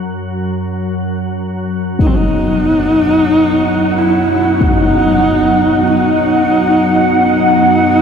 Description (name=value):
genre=dark ambient drone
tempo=46 BPM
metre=4/4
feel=straight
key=unclear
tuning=A4 = 440 Hz
part: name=organ-like drone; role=drone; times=0.0-8.0 s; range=F#2 to F#3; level=-18 LUFS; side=left 1 dB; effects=ensemble chorus, built-in reverb
part: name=dark horsehead fiddle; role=melody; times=2.0-8.0 s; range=B#3 to E4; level=-13 LUFS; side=equal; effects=ping-pong delay
part: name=dark analog pad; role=sustained chords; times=2.4-8.0 s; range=B3 to F#5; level=-15 LUFS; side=right 1 dB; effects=chorus
part: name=impact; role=percussion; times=2.0-4.9 s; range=none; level=-19 LUFS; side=left 1 dB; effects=low-pass filter on sfx
part: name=wind-like tuned noise texture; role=texture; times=2.5-8.0 s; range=F#5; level=-20 LUFS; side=right 3 dB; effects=built-in reverb
room=wet huge ambient reverb, RT60 7.8 s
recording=none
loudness=-10 LUFS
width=side -7 dB against mid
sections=0.0-8.0 A section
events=none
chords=0.0 N.C.; 2.0 B